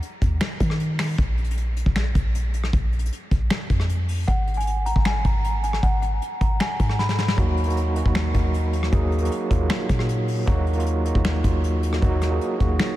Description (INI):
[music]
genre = hip hop, trap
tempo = 155 BPM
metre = 4/4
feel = half-time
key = Eb minor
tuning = A4 = 441 Hz
[part]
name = soft brush drum kit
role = drums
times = 0.0-12.9 s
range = finger snaps, hi-hat, kick drum, rim click, snare drum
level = -24 LUFS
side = equal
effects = none
[part]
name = warm 808-style bass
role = bass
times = 0.2-12.8 s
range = Ab1 to Eb3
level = -23 LUFS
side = equal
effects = none
[part]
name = worn celesta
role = melody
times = 4.3-7.4 s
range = Gb5 to Cb6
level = -30 LUFS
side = equal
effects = low-pass filter, analog delay
[part]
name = overdriven tine electric piano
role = accompaniment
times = 7.4-13.0 s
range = Gb3 to Ab4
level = -26 LUFS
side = right 2 dB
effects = fast tremolo, low-pass filter
[sound]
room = light reverb, studio reverb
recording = none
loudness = -20 LUFS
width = side -15 dB against mid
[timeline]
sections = 0.0-13.0 A section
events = break 0.0-1.2; drum fill 7.0-7.4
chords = 0.0 N.C.; 1.2 Bb5; 4.3 Absus2; 7.4 Ebm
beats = 0.02 0.41 0.80 | 1.19 1.57 1.96 2.35 | 2.73 3.12 3.51 3.90 | 4.28 4.67 5.06 5.44 | 5.83 6.22 6.60 6.99 | 7.38 7.77 8.15 8.54 | 8.93 9.31 9.70 10.09 | 10.47 10.86 11.25 11.64 | 12.02 12.41 12.80